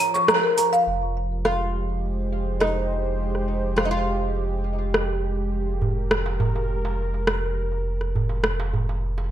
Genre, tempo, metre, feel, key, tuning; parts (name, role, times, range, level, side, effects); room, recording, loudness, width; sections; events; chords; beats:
organic downtempo; 103 BPM; 4/4; straight; F minor; A4 = 441 Hz
oud; melody; 0.0-5.2 s; Eb4 to F4; -30 LUFS; equal; tape echo
warm analog pad; sustained chords; 0.0-9.3 s; F3 to Db5; -30 LUFS; right 1 dB; chorus
marimba with medium mallets; arpeggios; 0.0-0.9 s; Bb4 to Db6; -20 LUFS; equal; ping-pong delay
deep house drum kit; drums; 0.1-8.6 s; hi-hat, rim click, shaker; -24 LUFS; equal; overdrive, low-pass filter on hats, low-pass filter on perc, low-pass filter on snare
darbuka; percussion; 0.2-0.8, 5.8-9.3 s; -28 LUFS; right 2 dB
warm sub bass; bass; 0.9-9.3 s; F1; -26 LUFS; equal; tube saturation
moderate plate reverb, RT60 1.3 s, studio ambience; rough home demo mix; -21 LUFS; side -11 dB against mid
0.9-9.3 A section
break 0.0-0.9; band accent 0.3; filter sweep on drum 0.9-9.3
0.0 Bbm/F; 0.9 Fmadd9
0.28 | 0.87 1.45 2.03 2.61 | 3.20 3.78 4.36 4.94 | 5.53 6.11 6.69 7.27 | 7.86 8.44 9.02